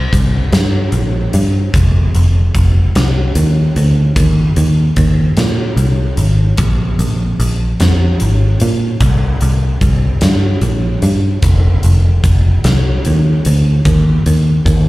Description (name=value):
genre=quiet-loud alternative rock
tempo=50 BPM (dotted quarters)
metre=6/8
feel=straight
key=C minor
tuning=A4 = 439 Hz
part: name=picked electric bass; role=bass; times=0.0-14.9 s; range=F1 to Bb2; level=-11 LUFS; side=equal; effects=none
part: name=huge arena drum kit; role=drums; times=0.1-14.9 s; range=hi-hat, kick drum, snare drum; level=-17 LUFS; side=equal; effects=none
room=little or no reverb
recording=live gig heard through the venue's PA, club reverb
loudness=-10 LUFS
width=side -18 dB against mid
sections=0.0-14.9 A section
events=none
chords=none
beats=0.54 | 1.75 2.96 | 4.17 5.38 | 6.59 7.80 | 9.02 10.23 | 11.44 12.65 | 13.86